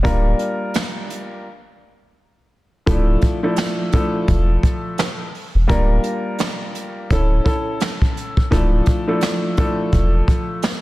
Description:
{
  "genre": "hip hop, boom-bap hip-hop",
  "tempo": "85 BPM",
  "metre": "4/4",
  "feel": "swing 58% on 16ths",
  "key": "D harmonic minor",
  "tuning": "A4 = 440 Hz",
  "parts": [
    { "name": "dark upright piano", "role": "accompaniment", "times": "0.0-10.8 s", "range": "F3 to Bb4", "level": "-22 LUFS", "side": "equal", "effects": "cassette tape, high-pass filter, low-pass filter" },
    { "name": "saturated sub bass", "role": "bass", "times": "0.0-10.2 s", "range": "D1 to E1", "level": "-16 LUFS", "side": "equal", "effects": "none" },
    { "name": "jazz brush drum kit", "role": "drums", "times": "0.0-10.8 s", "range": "hi-hat, kick drum, snare drum", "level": "-20 LUFS", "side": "equal", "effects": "none" }
  ],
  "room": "light reverb, studio ambience",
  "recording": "dense, heavily limited modern master",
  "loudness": "-16 LUFS",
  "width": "side -18 dB against mid",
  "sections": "0.0-10.8 A section",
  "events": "break 1.5-2.9",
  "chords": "0.0 Gm7/D; 1.5 N.C.; 2.9 Dmadd9; 5.7 Gm7/D; 7.1 A/D; 8.5 Dmadd9"
}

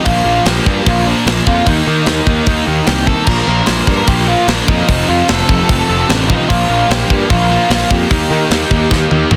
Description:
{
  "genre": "punk rock",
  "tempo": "149 BPM",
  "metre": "4/4",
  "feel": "straight",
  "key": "unclear",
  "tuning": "A4 = 441 Hz",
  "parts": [
    { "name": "dark smooth lead guitar", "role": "melody", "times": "0.0-9.3 s", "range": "D4 to C6", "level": "-20 LUFS", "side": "equal", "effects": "overdrive, tape echo" },
    { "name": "distorted electric guitar", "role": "riff", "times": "0.0-9.4 s", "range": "F2 to Eb4", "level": "-21 LUFS", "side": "equal", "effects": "overdrive" },
    { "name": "overdriven semi-hollow guitar", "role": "riff", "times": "0.0-9.4 s", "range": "F2 to Eb4", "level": "-23 LUFS", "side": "equal", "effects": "none" },
    { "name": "tight distorted guitar", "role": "riff", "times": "0.0-9.4 s", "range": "F2 to Eb4", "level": "-25 LUFS", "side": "equal", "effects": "none" },
    { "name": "fuzz picked electric bass", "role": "bass", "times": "0.1-9.4 s", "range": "F1 to Eb3", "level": "-19 LUFS", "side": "equal", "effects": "overdrive" },
    { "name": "tight metal drum kit", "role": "drums", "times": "0.1-9.4 s", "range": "crash cymbal, hi-hat, kick drum, snare drum, toms", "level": "-18 LUFS", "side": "equal", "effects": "soft clipping on kick" }
  ],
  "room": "little or no reverb",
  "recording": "dense, heavily limited modern master",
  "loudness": "-13 LUFS",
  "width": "mono",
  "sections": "0.0-9.4 A section",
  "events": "drum fill 8.9-9.4",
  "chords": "0.1 Bb; 1.7 Eb; 3.3 Bb; 4.9 F; 6.5 Bb5; 8.1 Eb"
}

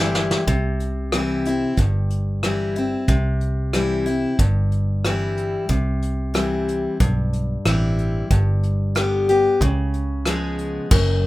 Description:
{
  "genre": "honky-tonk and classic country",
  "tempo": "92 BPM",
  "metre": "4/4",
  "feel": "straight",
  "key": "C major",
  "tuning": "A4 = 440 Hz",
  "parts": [
    { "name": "picked steel-string acoustic guitar", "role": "accompaniment", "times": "0.0-11.3 s", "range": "Gb2 to Ab4", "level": "-22 LUFS", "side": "left 2 dB", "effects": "none" },
    { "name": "pedal steel guitar", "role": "sustained chords", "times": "0.0-0.5 s", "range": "none", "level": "barely audible", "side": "none", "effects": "none" },
    { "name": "vintage muted fingered electric bass", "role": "bass", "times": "0.0-11.3 s", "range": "Gb1 to Db2", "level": "-22 LUFS", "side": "equal", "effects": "none" },
    { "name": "soft brush drum kit", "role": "drums", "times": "0.1-11.1 s", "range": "crash cymbal, hi-hat, kick drum, rim click, snare drum", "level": "-21 LUFS", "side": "equal", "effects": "none" }
  ],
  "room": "little or no reverb",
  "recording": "rough home demo mix",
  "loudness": "-18 LUFS",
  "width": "side -17 dB against mid",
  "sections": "0.5-10.9 A section",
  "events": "drum fill 0.0-0.5",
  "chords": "0.5 C; 8.3 G; 9.6 Db7"
}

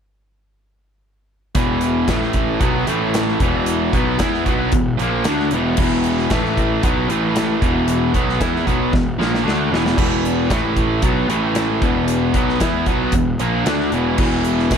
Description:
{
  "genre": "classic rock",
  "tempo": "114 BPM",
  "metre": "4/4",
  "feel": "straight",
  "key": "unclear",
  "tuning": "A4 = 439 Hz",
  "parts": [
    { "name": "big rock drum kit", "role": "drums", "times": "1.5-14.8 s", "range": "crash cymbal, hi-hat, kick drum, snare drum", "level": "-21 LUFS", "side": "equal", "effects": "none" },
    { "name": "distorted electric guitar", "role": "riff", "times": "1.6-14.8 s", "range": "E2 to E4", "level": "-21 LUFS", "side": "left 10 dB", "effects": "distortion" },
    { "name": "overdriven electric guitar", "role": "riff", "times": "1.6-14.8 s", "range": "E2 to E4", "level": "-21 LUFS", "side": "right 13 dB", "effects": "none" },
    { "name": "fuzz picked electric bass", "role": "bass", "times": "1.6-14.8 s", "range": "E1 to E2", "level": "-23 LUFS", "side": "equal", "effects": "overdrive" }
  ],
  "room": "little or no reverb",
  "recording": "faint mains hum",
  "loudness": "-16 LUFS",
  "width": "side -7 dB against mid",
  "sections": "1.5-14.8 A section",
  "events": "drum fill 8.9-10.0",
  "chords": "1.5 E5; 2.1 A5; 2.6 B5; 2.9 A5; 3.4 E5; 6.3 A5; 6.8 B5; 7.1 A5; 7.6 E5; 10.5 A5; 11.0 B5; 11.3 A5; 11.8 E5"
}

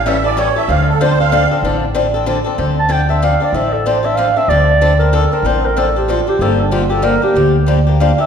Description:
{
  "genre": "acoustic string swing (jazz manouche)",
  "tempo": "189 BPM",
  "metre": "3/4",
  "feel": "swing 59% on 8ths",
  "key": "D minor",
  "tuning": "A4 = 440 Hz",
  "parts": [
    { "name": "musette accordion", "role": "second line", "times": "0.0-1.5 s", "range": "A4 to F5", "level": "-16 LUFS", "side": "right 5 dB", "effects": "none" },
    { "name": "upright bass", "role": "bass", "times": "0.0-8.1 s", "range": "G1 to D2", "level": "-16 LUFS", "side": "equal", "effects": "none" },
    { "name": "picked swing-style acoustic guitar", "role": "accompaniment", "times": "0.1-8.3 s", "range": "D3 to A4", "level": "-16 LUFS", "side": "left 3 dB", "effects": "none" },
    { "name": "dark clarinet", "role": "melody", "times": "2.8-8.3 s", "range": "D4 to A5", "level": "-16 LUFS", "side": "right 2 dB", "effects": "none" }
  ],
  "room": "wet recital hall reverb, RT60 1.4 s",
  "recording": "recorded in a church or concert hall",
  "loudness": "-12 LUFS",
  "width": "side -7 dB against mid",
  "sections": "0.0-2.6 A section; 2.6-8.3 A section",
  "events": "accordion solo 0.0-2.6; clarinet solo 2.6-8.3",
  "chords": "0.0 A7; 0.7 Dm7; 6.4 Gm7"
}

